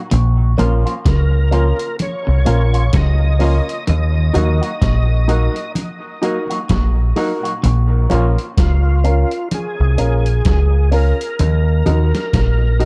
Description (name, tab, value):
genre	dub reggae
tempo	64 BPM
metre	4/4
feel	swing 58% on 16ths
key	Bb minor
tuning	A4 = 440 Hz
part	clean electric guitar	riff	0.1-7.9 s	Bb2 to Eb3	-27 LUFS	equal	none
part	deep dub picked electric bass	bass	0.1-12.9 s	Bb1 to Eb2	-16 LUFS	equal	none
part	dusty soul sampler-style drum kit	drums	0.1-12.9 s	hi-hat, kick drum, snare drum	-23 LUFS	equal	overdrive
part	congas	percussion	0.1-12.1 s	none	-27 LUFS	equal	dub echo
part	electric guitar with an envelope filter	accompaniment	0.6-8.3 s	F3 to Gb4	-28 LUFS	equal	spring reverb, dub echo
part	dark upright piano	stabs	0.6-12.9 s	Db4 to Bb4	-26 LUFS	equal	dub echo
part	overdriven tonewheel organ	melody	1.1-12.9 s	F4 to Eb5	-27 LUFS	equal	chorus vibrato, slow rotary speaker, dub echo
room	little or no reverb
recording	dark, warm production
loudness	-16 LUFS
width	mono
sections	0.0-12.9 A section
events	none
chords	0.1 Bbm; 3.9 Ebm; 7.6 Bbm; 11.4 Ebm